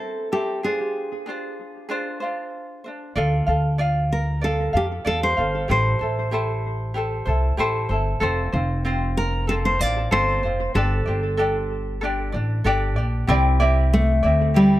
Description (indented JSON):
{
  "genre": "acoustic pop",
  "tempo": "95 BPM",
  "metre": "4/4",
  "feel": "straight",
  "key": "C major",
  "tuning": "A4 = 440 Hz",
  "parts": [
    { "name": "nylon-string guitar", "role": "melody", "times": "0.0-14.8 s", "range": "G3 to D5", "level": "-23 LUFS", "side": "equal", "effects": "analog delay" },
    { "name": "ukulele", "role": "accompaniment", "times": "0.0-14.8 s", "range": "C4 to F5", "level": "-25 LUFS", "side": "equal", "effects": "none" },
    { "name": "upright bass", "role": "bass", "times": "3.2-14.8 s", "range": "F1 to F2", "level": "-22 LUFS", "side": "equal", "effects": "none" }
  ],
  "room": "moderate spring reverb, RT60 1.5 s, small room ambience",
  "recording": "echo-heavy mix",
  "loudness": "-20 LUFS",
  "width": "side -15 dB against mid",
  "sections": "0.0-3.2 A section; 3.2-13.3 B section; 13.3-14.8 C section",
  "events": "none",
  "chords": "0.0 Am7; 0.6 Fm6; 3.2 Dm; 5.7 Am7; 8.2 F; 10.7 Gsus2; 13.3 Cadd9",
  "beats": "0.00 | 0.63 1.27 1.90 2.53 | 3.16 3.79 4.42 5.06 | 5.69 6.32 6.95 7.58 | 8.22 8.85 9.48 10.12 | 10.75 11.38 12.02 12.65 | 13.28 13.91 14.54"
}